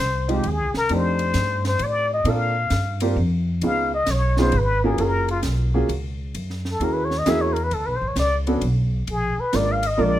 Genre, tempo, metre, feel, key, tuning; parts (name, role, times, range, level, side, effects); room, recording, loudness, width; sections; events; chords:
jazz, small-group swing and bop; 132 BPM; 3/4; swing 67% on 8ths; F# major from 5.0 s; A4 = 437 Hz
trumpet with plunger mute; melody; 0.0-10.2 s; E#4 to E#5; -23 LUFS; left 2 dB; plate reverb
upright bass; bass; 0.0-10.2 s; F#1 to Bb2; -23 LUFS; equal
warm baby grand piano; accompaniment; 0.3-10.2 s; Ab3 to Bb4; -24 LUFS; right 2 dB
compact cocktail drum kit; drums; 0.3-9.9 s; hi-hat, ride cymbal, snare drum; -33 LUFS; right 1 dB
light reverb; close, detailed microphones; -19 LUFS; side -13 dB against mid
0.0-5.0 A section; 5.0-10.2 A section
muted trumpet solo 0.0-10.2
0.0 Dbmaj9#11; 0.9 F13; 2.3 Bbmaj9; 3.6 Db7; 5.0 F#maj7; 6.3 F#7; 7.7 Bm7; 9.1 A#7